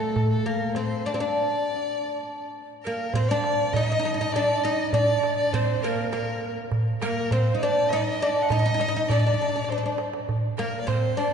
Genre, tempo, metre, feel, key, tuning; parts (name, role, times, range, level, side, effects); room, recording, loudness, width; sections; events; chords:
Arabic maqam ensemble; 101 BPM; 3/4; straight; D maqam hijaz; A4 = 436 Hz
oud; melody; 0.0-11.3 s; A3 to Eb4+25c; -26 LUFS; equal
warm violin; second line; 0.0-11.3 s; A4 to F#5; -31 LUFS; left 3 dB
darbuka; percussion; 0.2-11.0 s; -27 LUFS; right 1 dB
breathy mellow pan flute; second line; 2.8-11.3 s; Bb4 to Eb5+28c; -31 LUFS; right 4 dB
wet church reverb, RT60 3.3 s; recorded in a church or concert hall, nothing above 10.9 kHz; -22 LUFS; side -7 dB against mid
0.0-3.1 A section; 3.1-11.3 B section
break 1.4-3.1; drum fill 9.7-10.3